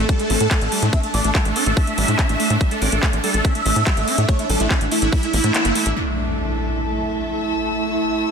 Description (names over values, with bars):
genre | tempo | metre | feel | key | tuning
psychedelic trance | 143 BPM | 4/4 | straight | A major | A4 = 435 Hz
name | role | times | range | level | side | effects
dense compressed supersaw | melody | 0.0-5.9 s | E4 to E5 | -23 LUFS | equal | phaser, vintage 12-bit sampler grit, sidechain pumping, tape echo
swarming drone | sustained chords | 0.0-8.3 s | A3 to E4 | -25 LUFS | right 2 dB | built-in reverb, sidechain pumping
screaming distorted acid line | riff | 0.0-5.9 s | G3 to C#4 | -27 LUFS | right 1 dB | distortion, chorus, auto-pan, sidechain pumping, tape echo
tight sequencer bass | bass | 0.0-5.9 s | G1 to A2 | -21 LUFS | equal | none
drum and bass drum kit | drums | 0.1-5.9 s | handclaps, hi-hat | -24 LUFS | equal | low-pass filter on hats, low-pass filter on cymbals, low-pass filter on snare, low-pass filter on room
electronic kick drum | drums | 0.1-5.2 s | none | -19 LUFS | equal | overdrive
vowel-sweep wobble bass | second line | 0.3-4.3 s | A3 to C#4 | -38 LUFS | left 6 dB | none
impact | sound effects | 6.0-7.6 s | none | -26 LUFS | equal | none
warm chamber string section | texture | 6.0-8.3 s | A3 to E6 | -25 LUFS | left 1 dB | sidechain pumping
room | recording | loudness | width
moderate digital room reverb, RT60 1.2 s, digital ambience | dense, heavily limited modern master | -17 LUFS | side -6 dB against mid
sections
0.0-6.0 A section; 6.0-8.3 B section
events
drop 0.0-6.0; kick drops out 5.5-6.0; band accent 5.5; impact 6.0-7.6; filter sweep on synth drone 6.0-8.3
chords
0.0 A5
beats
0.09 0.51 | 0.93 1.35 1.77 2.19 | 2.61 3.03 3.45 3.87 | 4.29 4.71 5.12 5.54 | 5.96 6.38 6.80 7.22 | 7.64 8.06